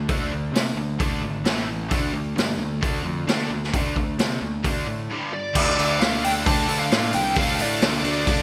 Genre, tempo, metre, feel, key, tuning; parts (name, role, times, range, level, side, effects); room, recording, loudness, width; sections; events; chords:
hard rock; 132 BPM; 4/4; straight; D minor; A4 = 440 Hz
cranked stack guitar; riff; 0.0-8.4 s; G2 to D4; -33 LUFS; equal; overdrive
cranked stack guitar; riff; 0.0-8.4 s; G2 to D4; -33 LUFS; equal; overdrive, analog chorus
fuzz picked electric bass; bass; 0.0-8.4 s; G#1 to D3; -31 LUFS; equal; overdrive
raw garage drum kit; drums; 0.1-8.4 s; crash cymbal, hi-hat, kick drum, snare drum; -26 LUFS; equal
bluesy overdriven lead guitar; melody; 5.3-8.4 s; D5 to A5; -28 LUFS; equal; distortion
dark analog pad; sustained chords; 6.6-8.4 s; D4 to F5; -39 LUFS; equal
distorted electric guitar; riff; 5.5-8.4 s; D3 to D4; -34 LUFS; equal
moderate lush hall reverb, RT60 1.9 s; bright 1980s-style digital production; -23 LUFS; mono
0.0-5.6 A section; 5.6-8.4 B section
0.0 D5; 1.5 A5; 1.9 D5; 5.1 G5; 5.6 Dm